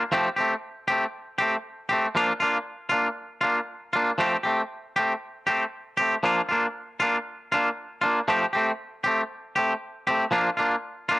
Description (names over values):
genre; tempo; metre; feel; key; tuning
highlife; 117 BPM; 4/4; swing 55% on 16ths; Bb major; A4 = 440 Hz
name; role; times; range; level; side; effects
twangy electric guitar; solo; 0.0-11.2 s; F3 to G4; -22 LUFS; equal; cassette tape
room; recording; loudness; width
moderate spring reverb, RT60 1.3 s, digital ambience; home recording on cassette; -23 LUFS; side -20 dB against mid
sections
0.0-2.2 A section; 2.2-11.2 B section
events
none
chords
0.1 Fadd9 (rootless); 2.2 Bb; 4.2 Fadd9 (rootless); 6.2 Bb; 8.3 Fadd9 (rootless); 10.3 Bb